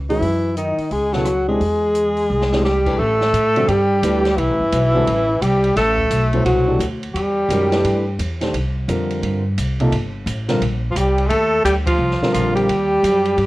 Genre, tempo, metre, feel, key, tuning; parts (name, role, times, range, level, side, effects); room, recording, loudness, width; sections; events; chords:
modal jazz; 173 BPM; 4/4; swing 63% on 8ths; A4 = 440 Hz
upright bass; bass; 0.0-13.5 s; G1 to A2; -22 LUFS; equal
breathy alto saxophone; melody; 0.1-8.1, 10.9-13.5 s; D#4 to A4; -19 LUFS; right 1 dB; plate reverb
breathy tenor saxophone; second line; 0.1-8.1, 10.9-13.5 s; D#3 to A3; -22 LUFS; left 2 dB
dark baby grand piano; accompaniment; 0.1-12.7 s; B2 to C5; -21 LUFS; equal
open jazz drum kit; drums; 0.1-13.5 s; crash cymbal, hi-hat, kick drum, ride cymbal, rim click, snare drum; -29 LUFS; right 1 dB
moderate studio reverb, RT60 0.8 s; worn, warbling old tape, cassette tape, warbly pitch drift; -16 LUFS; side -18 dB against mid
0.0-3.0 A section; 3.0-13.5 B section
drum fill 2.3-2.6; band accent 11.8
0.0 F#7sus2; 1.6 E7alt; 3.0 Am9; 8.5 C7sus2; 12.7 D#